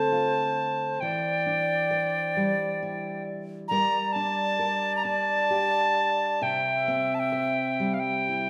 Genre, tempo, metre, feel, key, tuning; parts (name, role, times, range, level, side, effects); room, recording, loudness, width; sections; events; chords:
celtic folk, Celtic slow air; 44 BPM (dotted quarters); 6/8; rubato; A4 = 441 Hz
wooden whistle; melody; 0.0-8.5 s; F5 to Bb5; -29 LUFS; equal
bright baroque flute; second line; 0.0-8.5 s; C5 to E5; -31 LUFS; equal
fingerpicked steel-string acoustic guitar; accompaniment; 0.0-8.5 s; C3 to C5; -34 LUFS; equal
wet recital hall reverb, RT60 1.6 s; -26 LUFS; mono
0.0-8.5 A section
0.0 Dm7; 1.0 Cadd9/E; 3.7 Gm; 6.4 C